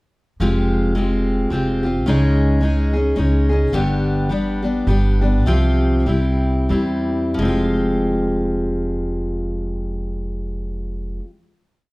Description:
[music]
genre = acoustic folk duo or small band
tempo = 86-108 BPM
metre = 3/4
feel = swing 58% on 8ths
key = F minor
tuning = A4 = 440 Hz
[part]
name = picked steel-string acoustic guitar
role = accompaniment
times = 0.4-11.3 s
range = G2 to Ab4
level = -19 LUFS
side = left 1 dB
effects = none
[part]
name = upright bass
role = bass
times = 0.4-11.2 s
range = F1 to E2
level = -20 LUFS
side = equal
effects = none
[sound]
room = light reverb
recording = dark, warm production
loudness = -16 LUFS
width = side -23 dB against mid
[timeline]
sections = 0.4-7.4 interlude; 7.4-11.5 final chord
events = slowing down 3.7-7.4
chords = 0.4 Fmadd9; 2.1 Dbsus2; 3.7 G; 5.5 Csus4; 6.1 C; 7.4 Fmadd9

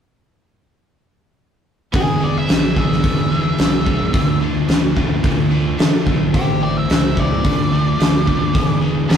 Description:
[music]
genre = blues rock power trio and southern rock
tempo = 109 BPM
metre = 4/4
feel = straight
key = unclear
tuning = A4 = 440 Hz
[part]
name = overdriven electric guitar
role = riff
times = 1.9-9.2 s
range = A2 to G#4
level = -23 LUFS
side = equal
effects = none
[part]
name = growling fingered electric bass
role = bass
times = 1.9-9.2 s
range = E1 to D3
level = -23 LUFS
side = equal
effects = overdrive
[part]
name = big rock drum kit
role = drums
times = 1.9-9.2 s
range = hi-hat, kick drum, snare drum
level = -16 LUFS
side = equal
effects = none
[part]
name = octave-fuzz lead guitar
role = melody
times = 2.0-9.2 s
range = G4 to D6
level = -23 LUFS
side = equal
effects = distortion
[sound]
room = light reverb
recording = rough rehearsal-room recording, warm saturation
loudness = -14 LUFS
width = side -8 dB against mid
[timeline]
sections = 1.9-9.2 A section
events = none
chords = 1.9 E7; 4.1 Dm; 6.3 Am; 7.4 Dm; 8.5 E7

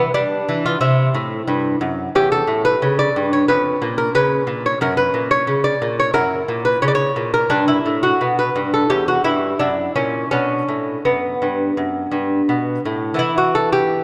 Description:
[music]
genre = classical, baroque-style dance for lute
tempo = 82-90 BPM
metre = 4/4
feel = rubato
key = B minor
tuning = A4 = 440 Hz
[part]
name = lute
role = solo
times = 0.0-14.0 s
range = E2 to D5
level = -18 LUFS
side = equal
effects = none
[sound]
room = wet concert hall reverb, RT60 2.6 s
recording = dark, warm production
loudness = -18 LUFS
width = mono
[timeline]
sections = 0.0-13.2 A section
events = none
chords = 0.0 G; 0.8 C; 2.2 C#dim/E; 3.5 C#/E#; 4.8 F#; 6.2 F#7; 7.5 G; 8.9 C#dim/E; 9.6 F#7; 10.3 Bm; 13.2 E5

